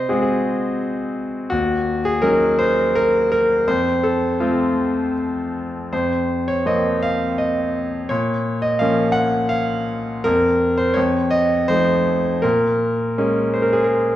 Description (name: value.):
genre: classical, lyrical solo piano.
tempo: 83 BPM.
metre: 3/4.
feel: rubato.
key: Bb minor.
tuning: A4 = 435 Hz.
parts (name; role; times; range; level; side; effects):
bright concert grand piano; solo; 0.0-14.2 s; Eb2 to Gb5; -17 LUFS; equal; none.
room: wet recital hall reverb, RT60 1.4 s.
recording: dark, warm production.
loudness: -17 LUFS.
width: side -13 dB against mid.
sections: 0.0-14.2 A section.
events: none.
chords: 0.0 Ab7/C; 1.5 Ebm7; 3.7 F; 5.9 Fsus4; 8.1 Bbm; 10.2 N.C.; 11.0 F7; 12.4 Bbm7.